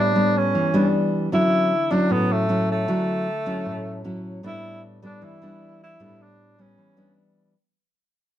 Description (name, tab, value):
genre	bossa nova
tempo	154 BPM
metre	4/4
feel	straight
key	unclear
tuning	A4 = 440 Hz
part	breathy tenor saxophone	melody	0.0-7.2 s	A3 to E4	-24 LUFS	equal	none
part	nylon-string guitar	accompaniment	0.0-7.5 s	A2 to E4	-22 LUFS	equal	none
room	moderate studio reverb, RT60 0.7 s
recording	dark, warm production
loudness	-19 LUFS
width	side -11 dB against mid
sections	0.0-7.6 A section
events	fade-out 0.0-7.6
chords	0.0 A9sus4; 1.3 Dmaj9; 4.4 A9sus4